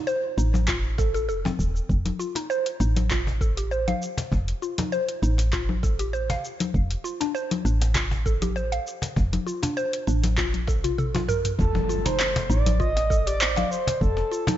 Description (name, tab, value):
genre	organic downtempo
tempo	99 BPM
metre	4/4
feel	swing 54% on 16ths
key	F mixolydian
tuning	A4 = 440 Hz
part	mallet-like synth pluck	arpeggios	0.0-14.6 s	C4 to F5	-29 LUFS	equal	chorus, phaser, ping-pong delay
part	afro-pop drum kit	drums	0.1-14.6 s	cabasa, congas, handclaps, hi-hat, toms	-28 LUFS	left 3 dB	none
part	woody FM bass	bass	0.4-14.2 s	Eb1 to Bb1	-24 LUFS	equal	none
part	cajon	percussion	0.6-14.6 s	none	-31 LUFS	left 2 dB	none
part	electronic kick drum	drums	0.7-14.1 s	none	-27 LUFS	equal	none
part	breathy flute-like synth lead	melody	11.6-14.6 s	A4 to Eb5	-26 LUFS	right 1 dB	tremolo, lush chorus, ping-pong delay
part	impact	sound effects	11.6-14.0 s	none	-32 LUFS	equal	none
room	light reverb, digital ambience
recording	nothing above 7.8 kHz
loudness	-22 LUFS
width	side -12 dB against mid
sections	0.0-11.6 A section; 11.6-14.6 B section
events	drum fill 10.4-11.6; kick drops out 11.0-11.6; impact 11.6-14.0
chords	0.0 Cmadd11; 1.9 N.C.; 6.7 Bbmaj7(no3)/F; 11.6 F7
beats	0.07 0.68 1.29 | 1.89 2.50 3.10 3.71 | 4.32 4.92 5.53 6.13 | 6.74 7.35 7.95 8.56 | 9.16 9.77 10.38 10.98 | 11.59 12.20 12.80 13.41 | 14.01